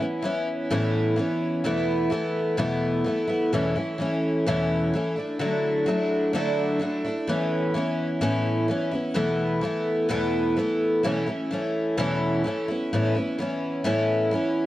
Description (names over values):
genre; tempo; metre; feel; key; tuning
rock; 128 BPM; 4/4; straight; A major; A4 = 439 Hz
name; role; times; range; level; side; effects
picked twelve-string acoustic guitar; solo; 0.0-14.7 s; E2 to E4; -22 LUFS; equal; none
room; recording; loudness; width
light reverb; worn, warbling old tape, cassette tape, warbly pitch drift; -22 LUFS; side -14 dB against mid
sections
0.0-14.7 A section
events
none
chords
0.0 Aadd9; 1.6 Esus4; 3.5 Aadd9/E; 5.2 Dadd9; 7.3 Aadd9; 9.2 Esus4; 11.0 Aadd9/E; 12.7 Aadd9